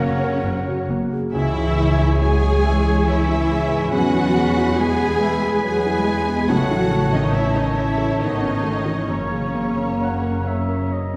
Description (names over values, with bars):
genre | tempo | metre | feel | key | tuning
cinematic, emotional film score for orchestra | 70 BPM | 3/4 | uneven beats, rubato | unclear | A4 = 440 Hz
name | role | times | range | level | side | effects
warm symphonic violin section | melody | 0.0-10.9 s | C#5 to G#5 | -36 LUFS | equal | none
hollow concert flute | second line | 0.0-11.2 s | F#5 to A#5 | -32 LUFS | equal | none
rich symphonic violin section | second line | 0.0-10.9 s | C#5 to G#5 | -35 LUFS | equal | none
warm oboe | second line | 0.0-11.2 s | A#4 to F#5 | -31 LUFS | equal | none
felt-muted upright piano | accompaniment | 0.0-11.2 s | C#2 to F#5 | -27 LUFS | equal | none
warm symphonic viola section | accompaniment | 0.0-10.9 s | C#4 to G#4 | -28 LUFS | equal | none
warm French horn section | sustained chords | 0.0-11.2 s | E3 to C#4 | -29 LUFS | equal | none
concert harp | arpeggios | 0.0-11.2 s | F#2 to C#6 | -30 LUFS | equal | none
warm symphonic cello section | bass | 0.0-10.9 s | C#3 to G#3 | -30 LUFS | equal | none
warm symphonic double bass section | bass | 0.0-11.2 s | F#1 to E2 | -26 LUFS | equal | none
room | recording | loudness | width
wet scoring stage reverb, RT60 1.6 s | heard from further back in the room | -20 LUFS | mono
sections
0.0-11.2 A section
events
none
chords
0.0 F#; 1.3 C#m; 3.9 Eadd9; 6.5 A6; 9.1 F#